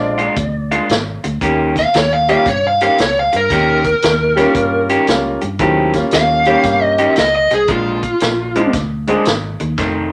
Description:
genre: electric blues shuffle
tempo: 115 BPM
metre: 4/4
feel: swing 66% on 8ths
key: unclear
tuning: A4 = 440 Hz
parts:
  - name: lead guitar through a small cranked amp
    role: melody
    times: 0.0-8.7 s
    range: F4 to F5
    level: -17 LUFS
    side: equal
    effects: overdrive
  - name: warm grand piano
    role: accompaniment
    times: 0.0-9.3 s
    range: Gb3 to Ab4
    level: -20 LUFS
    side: equal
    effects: none
  - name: vintage muted fingered electric bass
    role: bass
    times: 0.0-10.1 s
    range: F1 to G2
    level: -25 LUFS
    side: equal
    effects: none
  - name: electric guitar through a small old amp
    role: riff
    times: 0.2-10.1 s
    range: F2 to G4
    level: -20 LUFS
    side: equal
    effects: none
  - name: vintage drum kit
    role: drums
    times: 0.2-9.9 s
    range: hi-hat, kick drum, snare drum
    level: -23 LUFS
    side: equal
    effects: none
room: light reverb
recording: none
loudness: -15 LUFS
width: mono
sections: 0.0-10.1 A section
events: none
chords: 0.0 Bb7; 1.4 Eb7; 7.7 Bb7

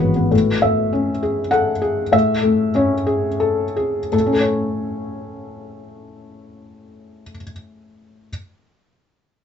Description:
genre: classical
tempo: 81-101 BPM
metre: 3/4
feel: rubato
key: A major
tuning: A4 = 438 Hz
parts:
  - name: felt-muted upright piano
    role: accompaniment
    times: 0.0-8.3 s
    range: G#2 to F#5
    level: -17 LUFS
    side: left 2 dB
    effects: none
room: light reverb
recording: nothing above 7.8 kHz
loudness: -16 LUFS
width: side -8 dB against mid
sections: 0.3-4.1 A section; 4.1-8.3 B section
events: slowing down 0.0-4.1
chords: 0.3 Amaj7; 4.1 A

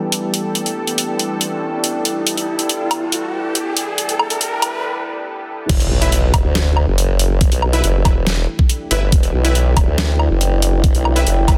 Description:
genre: heavy wobble dubstep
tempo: 140 BPM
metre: 4/4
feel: half-time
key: E minor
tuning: A4 = 440 Hz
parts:
  - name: lush unison pad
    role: sustained chords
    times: 0.0-5.7 s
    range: E3 to A4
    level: -27 LUFS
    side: equal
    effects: chorus, sidechain pumping
  - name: riser and impact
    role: sound effects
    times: 1.2-7.4 s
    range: none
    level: -28 LUFS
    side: equal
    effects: none
  - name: deep dark ambient pad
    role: texture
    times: 0.0-11.6 s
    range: E4 to G5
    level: -28 LUFS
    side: equal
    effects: chorus, built-in reverb, sidechain pumping
  - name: dubstep drum kit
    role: drums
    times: 0.1-11.6 s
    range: crash cymbal, hi-hat, snare drum, woodblock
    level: -22 LUFS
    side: equal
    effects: overdrive, high-pass filter on hats, studio reverb, high-pass filter on perc, high-pass filter on cymbals, high-pass filter on snare
  - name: formant-sweep wobble bass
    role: bass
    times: 5.7-11.6 s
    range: E1 to D2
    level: -18 LUFS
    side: equal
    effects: chorus, overdrive
  - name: electronic kick drum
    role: drums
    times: 5.7-11.6 s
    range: none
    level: -16 LUFS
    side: equal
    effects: overdrive, studio reverb
  - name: supersaw stab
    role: stabs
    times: 6.0-11.2 s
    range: E4 to E5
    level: -27 LUFS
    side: equal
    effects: cassette tape, tape echo
room: light reverb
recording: dense, heavily limited modern master, high-pass filter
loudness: -17 LUFS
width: mono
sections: 0.0-5.7 A section; 5.7-11.6 B section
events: build-up 0.0-5.7; filter sweep on analog synth pad 0.0-5.7; riser 1.2-4.8; break 4.8-5.7; drop 5.7-11.6; impact 5.7-7.4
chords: 0.0 Em

